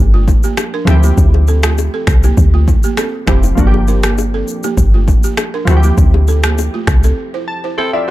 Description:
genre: afrobeats.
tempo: 100 BPM.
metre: 4/4.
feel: straight.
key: D minor.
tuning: A4 = 440 Hz.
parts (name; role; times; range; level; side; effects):
glassy digital keys; accompaniment; 0.0-8.1 s; F3 to A5; -20 LUFS; equal; chorus.
deep log drum bass; bass; 0.0-7.1 s; F1 to D2; -11 LUFS; equal; none.
balafon; riff; 0.1-8.1 s; A3 to C5; -21 LUFS; right 5 dB; tape echo.
afro-pop drum kit; drums; 0.3-7.2 s; finger snaps, kick drum, rim click, shaker; -14 LUFS; equal; none.
bongos and congas; percussion; 0.3-7.2 s; none; -24 LUFS; left 8 dB; none.
raspy alto saxophone; melody; 7.8-8.1 s; A4; -19 LUFS; left 1 dB; none.
room: little or no reverb.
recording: dark, warm production.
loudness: -10 LUFS.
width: side -16 dB against mid.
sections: 0.0-8.1 A section.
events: break 7.2-8.1; synth keys fill 7.2-8.1.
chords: 0.0 Gm7; 0.9 Dm11; 3.6 Gm7; 5.7 Dm11.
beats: 0.58 | 1.18 1.78 2.38 2.98 | 3.58 4.18 4.78 5.38 | 5.98 6.58 7.18 7.78.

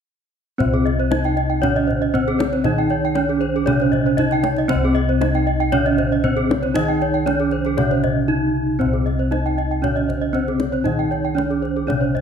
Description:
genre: Balinese gamelan.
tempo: 117 BPM.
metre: 4/4.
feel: straight.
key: C pelog.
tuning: A4 = 440 Hz.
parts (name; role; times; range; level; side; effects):
gamelan-type bronze metallophone; melody; 0.6-12.2 s; C4 to Eb4; -21 LUFS; right 2 dB; slapback echo.
gamelan-type bronze metallophone; accompaniment; 0.6-12.2 s; C3 to Eb3; -26 LUFS; right 1 dB; none.
gamelan-type bronze metallophone; arpeggios; 0.6-12.2 s; C5 to Eb5; -25 LUFS; left 4 dB; none.
gamelan-type bossed gongs; bass; 0.6-12.2 s; C2 to Eb4; -24 LUFS; left 2 dB; none.
kendang; percussion; 0.6-12.2 s; none; -26 LUFS; left 2 dB; none.
gamelan-type bronze metallophone; arpeggios; 0.7-12.1 s; Ab4 to G5; -26 LUFS; right 7 dB; none.
room: moderate recital hall reverb, RT60 1.5 s.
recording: dark, warm production.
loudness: -17 LUFS.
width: side -7 dB against mid.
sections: 0.6-12.2 A section.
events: none.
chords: none.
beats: | 0.60 1.11 1.63 2.14 | 2.65 3.17 3.68 4.19 | 4.70 5.22 5.73 6.24 | 6.75 7.27 7.78 8.29 | 8.81 9.32 9.83 10.34 | 10.86 11.37 11.88.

